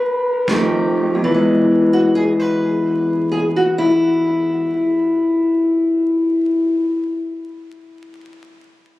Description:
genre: acoustic country blues, solo or duo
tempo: 86 BPM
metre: 4/4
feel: swing 66% on 8ths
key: unclear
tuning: A4 = 440 Hz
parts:
  - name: fingerpicked steel-string acoustic guitar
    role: melody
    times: 0.0-6.7 s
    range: E2 to B4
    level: -15 LUFS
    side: left 1 dB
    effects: tape echo
  - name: kick drum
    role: drums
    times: 0.5-0.7 s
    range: none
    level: -26 LUFS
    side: right 1 dB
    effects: none
room: moderate studio reverb, RT60 0.6 s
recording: recorded on a phone in the room, club reverb, vinyl crackle, compression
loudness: -15 LUFS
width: side -16 dB against mid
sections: 0.0-1.2 A section; 1.2-6.7 B section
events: slowing down 0.0-1.2; stop 0.0-0.5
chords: 0.5 F9; 1.2 E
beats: 0.48 | 1.15 1.85 2.54 3.23 | 3.93 4.62 5.32 6.01

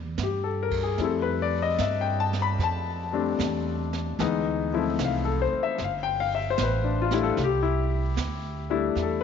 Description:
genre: jazz ballad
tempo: 75 BPM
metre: 4/4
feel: swing 66% on 8ths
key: unclear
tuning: A4 = 440 Hz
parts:
  - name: upright bass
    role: bass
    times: 0.0-9.2 s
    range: G1 to G2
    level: -29 LUFS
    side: right 2 dB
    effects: none
  - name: clear grand piano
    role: accompaniment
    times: 0.2-9.2 s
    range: E3 to B5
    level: -26 LUFS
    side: left 8 dB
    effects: none
  - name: jazz brush drum kit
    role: drums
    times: 0.2-9.2 s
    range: brushed snare drum, crash cymbal, hi-hat, kick drum, snare drum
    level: -36 LUFS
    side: right 10 dB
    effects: none
room: light reverb, small room ambience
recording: 1960s-style stereo with parts hard left and right, nothing above 7.5 kHz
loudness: -24 LUFS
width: side -7 dB against mid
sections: 0.0-9.2 A section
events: drum fill 0.0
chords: 0.0 Edim; 1.0 Fmaj9; 4.2 Dm9; 5.8 Gsus2; 7.4 C69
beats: 0.19 | 0.99 1.80 2.60 3.40 | 4.20 5.00 5.79 6.59 | 7.38 8.17 8.96

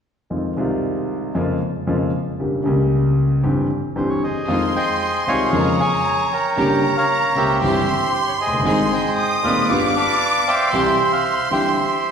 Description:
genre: tango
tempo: 115 BPM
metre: 4/4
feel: rubato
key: F minor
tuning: A4 = 440 Hz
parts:
  - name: clear concert grand piano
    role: accompaniment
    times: 0.3-11.7 s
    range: Eb1 to Ab4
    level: -20 LUFS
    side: left 1 dB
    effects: none
  - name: bandoneon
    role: melody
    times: 4.0-12.1 s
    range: G4 to A5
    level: -19 LUFS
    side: right 1 dB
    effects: none
  - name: clear studio violin section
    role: second line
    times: 4.5-12.1 s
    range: Bb5 to Eb6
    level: -23 LUFS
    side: equal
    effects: none
  - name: warm chamber string section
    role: stabs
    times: 4.5-11.7 s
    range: F3 to Ab4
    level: -30 LUFS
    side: right 2 dB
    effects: none
room: wet recital hall reverb, RT60 1.7 s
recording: recorded in a church or concert hall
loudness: -16 LUFS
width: side -7 dB against mid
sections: 0.3-4.5 A section; 4.5-12.1 B section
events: none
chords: 0.3 Fm7; 1.4 Bbm7/F; 2.4 Gdim; 3.4 C/G; 4.5 Fm7; 5.5 Bbm7/F; 6.6 Gdim; 7.6 C/G; 8.7 Ab; 9.7 G7; 10.7 C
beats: | 0.30 0.83 1.35 1.88 | 2.40 2.92 3.44 3.96 | 4.49 5.01 5.54 6.05 | 6.58 7.09 7.62 8.14 | 8.66 9.17 9.69 10.21 | 10.73 11.25 11.78

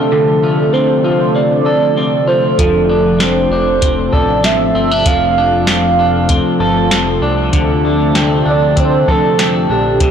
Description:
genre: dream pop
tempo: 97 BPM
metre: 4/4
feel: straight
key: F major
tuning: A4 = 440 Hz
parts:
  - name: warm velvety synth lead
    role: melody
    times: 0.0-10.1 s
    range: G4 to F5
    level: -15 LUFS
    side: right 3 dB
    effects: chorus, digital delay
  - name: warm analog pad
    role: sustained chords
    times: 0.0-10.1 s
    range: C3 to A4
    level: -17 LUFS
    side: equal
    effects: chorus
  - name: electric guitar at the edge of break-up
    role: arpeggios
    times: 0.0-10.1 s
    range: C3 to A4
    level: -16 LUFS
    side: left 2 dB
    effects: lush chorus, digital delay
  - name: fat analog bass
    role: bass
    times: 2.6-10.1 s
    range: F1 to F2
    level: -20 LUFS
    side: equal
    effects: transformer saturation
  - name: soft vintage rhythm box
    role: drums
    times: 2.6-10.1 s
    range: hi-hat, kick drum, snare drum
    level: -16 LUFS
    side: equal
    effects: none
room: moderate lush hall reverb, RT60 1.8 s, digital ambience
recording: blown-out, overdriven recording, overdrive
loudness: -10 LUFS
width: side -8 dB against mid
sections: 0.0-10.1 A section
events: none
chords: 0.0 F6; 7.5 Dm7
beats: | 0.11 0.73 1.35 1.97 | 2.59 3.20 3.82 4.44 | 5.06 5.68 6.30 6.92 | 7.53 8.15 8.77 9.39 | 10.01

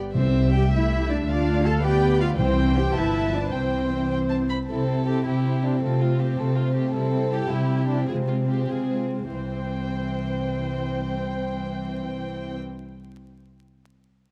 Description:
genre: quick classical-period movement for symphony orchestra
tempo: 91-109 BPM (dotted quarters)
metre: 6/8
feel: rubato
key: C major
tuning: A4 = 440 Hz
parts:
  - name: warm chamber violin section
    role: melody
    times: 0.1-12.6 s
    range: F4 to B5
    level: -37 LUFS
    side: equal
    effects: none
  - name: warm chamber violin section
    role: second line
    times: 0.1-12.6 s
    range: C4 to A5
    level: -33 LUFS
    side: equal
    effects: none
  - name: dark studio viola section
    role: accompaniment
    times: 0.1-12.6 s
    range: E3 to C5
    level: -33 LUFS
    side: equal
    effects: none
  - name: clear chamber double bass section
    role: bass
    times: 0.1-4.5 s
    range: G1 to D2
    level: -27 LUFS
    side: equal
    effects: none
  - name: dark chamber cello section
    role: bass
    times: 0.1-12.6 s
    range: C2 to A4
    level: -28 LUFS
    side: equal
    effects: none
  - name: timpani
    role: percussion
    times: 0.1-2.9 s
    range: C3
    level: -30 LUFS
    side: equal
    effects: none
room: light reverb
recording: close, detailed microphones, vinyl crackle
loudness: -24 LUFS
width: mono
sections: 0.0-4.7 A section; 4.7-9.3 B section; 9.3-11.8 C section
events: slowing down 6.4-9.3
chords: 0.1 C; 0.7 Am/C; 1.3 Dm; 1.8 Bdim/D; 2.4 C; 3.0 G13; 3.5 C; 5.8 F/C; 6.9 C; 8.1 Fm/C; 9.3 C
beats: | 0.15 0.72 | 1.28 1.83 | 2.40 2.96 | 3.53 4.12 | 4.70 5.26 | 5.83 6.39 | 6.94 7.49 | 8.07 8.68 | 9.33 9.95 | 10.56 11.18

